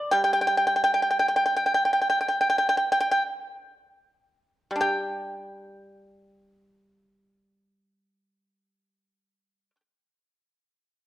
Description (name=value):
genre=chinese traditional, Chinese solo plucked strings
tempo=43-61 BPM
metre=4/4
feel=rubato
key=unclear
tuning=A4 = 442 Hz
part: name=pipa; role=solo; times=0.0-9.8 s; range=D3 to G5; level=-22 LUFS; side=equal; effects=none
room=moderate recital hall reverb, RT60 1.6 s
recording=dark, warm production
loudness=-21 LUFS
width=side -14 dB against mid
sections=0.0-4.8 A section; 4.8-10.1 B section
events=slowing down 0.0-4.8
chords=none